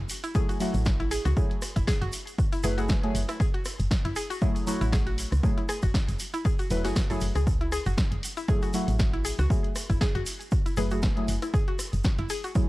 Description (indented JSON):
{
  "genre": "deep house",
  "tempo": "118 BPM",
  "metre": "4/4",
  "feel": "swing 56% on 16ths",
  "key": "F# minor",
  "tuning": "A4 = 440 Hz",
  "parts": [
    { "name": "woody FM bass", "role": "bass", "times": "0.0-12.3 s", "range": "E1 to C#2", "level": "-28 LUFS", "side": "equal", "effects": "sidechain pumping" },
    { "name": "punchy analog drum machine", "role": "drums", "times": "0.1-12.5 s", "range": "hi-hat, rim click, snare drum", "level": "-35 LUFS", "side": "equal", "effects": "none" },
    { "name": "tube shaker", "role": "percussion", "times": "0.1-12.7 s", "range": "none", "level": "-40 LUFS", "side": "right 2 dB", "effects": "none" },
    { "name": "mallet-like synth pluck", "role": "arpeggios", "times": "0.2-12.5 s", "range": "E4 to A4", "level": "-35 LUFS", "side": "left 1 dB", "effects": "wide subtle chorus, sidechain pumping, tape echo" },
    { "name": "deep mellow chord stab", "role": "stabs", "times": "0.3-12.7 s", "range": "F#3 to B4", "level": "-31 LUFS", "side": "equal", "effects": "chorus, phaser, sidechain pumping, analog delay" },
    { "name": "electronic kick drum", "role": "drums", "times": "0.3-12.7 s", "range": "none", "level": "-26 LUFS", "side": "equal", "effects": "none" }
  ],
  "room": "little or no reverb",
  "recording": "dry, gritty hardware recording, cassette tape",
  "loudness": "-24 LUFS",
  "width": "side -19 dB against mid",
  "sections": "0.0-12.7 A section",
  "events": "none",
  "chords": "0.0 F#m9"
}